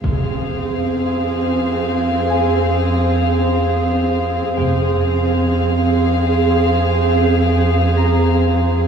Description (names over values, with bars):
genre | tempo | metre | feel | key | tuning
cinematic | 53 BPM | 4/4 | straight | F minor | A4 = 437 Hz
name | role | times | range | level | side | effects
warm chamber violin section | melody | 0.0-8.9 s | F5 | -25 LUFS | left 5 dB | none
rich studio viola section | accompaniment | 0.0-8.9 s | C4 to Ab4 | -20 LUFS | right 2 dB | none
warbly tape-like pad | sustained chords | 0.0-8.9 s | Ab4 to F5 | -22 LUFS | right 1 dB | chorus, built-in reverb
dark chamber cello section | bass | 0.0-8.9 s | F2 | -18 LUFS | right 1 dB | none
dark chamber double bass section | bass | 0.0-5.7 s | F1 | -25 LUFS | right 2 dB | none
impact | sound effects | 0.0-4.6 s | none | -25 LUFS | equal | none
Celtic harp | texture | 2.3-8.9 s | G5 to Bb5 | -29 LUFS | left 4 dB | none
room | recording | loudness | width
wet scoring stage reverb, RT60 1.9 s | heard from further back in the room, small room reverb | -14 LUFS | side -7 dB against mid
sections
0.0-8.9 A section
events
impact 0.0-4.6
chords
0.0 Fm